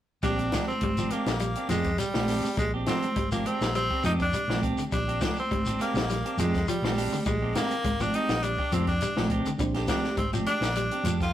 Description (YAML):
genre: afrobeat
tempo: 103 BPM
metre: 4/4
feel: swing 54% on 16ths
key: Bb mixolydian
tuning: A4 = 440 Hz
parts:
  - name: edgy tenor saxophone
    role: melody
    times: 0.2-11.3 s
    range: G3 to F4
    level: -30 LUFS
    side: equal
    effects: none
  - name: clean electric guitar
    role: arpeggios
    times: 0.2-11.2 s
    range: D3 to Ab3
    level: -34 LUFS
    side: left 2 dB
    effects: none
  - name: clean electric guitar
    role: stabs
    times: 0.2-11.2 s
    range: Ab3 to G4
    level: -34 LUFS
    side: right 3 dB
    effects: warbly pitch drift, slapback echo
  - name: hollow-body short-scale fingered electric bass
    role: bass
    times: 0.2-11.3 s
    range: Ab1 to F2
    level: -31 LUFS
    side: equal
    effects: none
  - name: compact cocktail drum kit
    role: drums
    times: 0.2-11.3 s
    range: hi-hat, kick drum, snare drum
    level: -32 LUFS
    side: left 1 dB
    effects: none
  - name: shekere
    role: percussion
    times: 0.2-11.3 s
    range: none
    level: -38 LUFS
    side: left 2 dB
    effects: none
  - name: congas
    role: percussion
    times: 0.5-11.2 s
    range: none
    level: -34 LUFS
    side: equal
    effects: none
  - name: reed electric piano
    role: accompaniment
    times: 9.6-10.2 s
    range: Ab3 to G4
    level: -31 LUFS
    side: right 3 dB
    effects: phaser
room: moderate stone room reverb, RT60 1.2 s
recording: rough rehearsal-room recording, tube saturation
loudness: -24 LUFS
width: side -12 dB against mid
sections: 0.2-11.3 A section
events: none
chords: 0.2 Bb13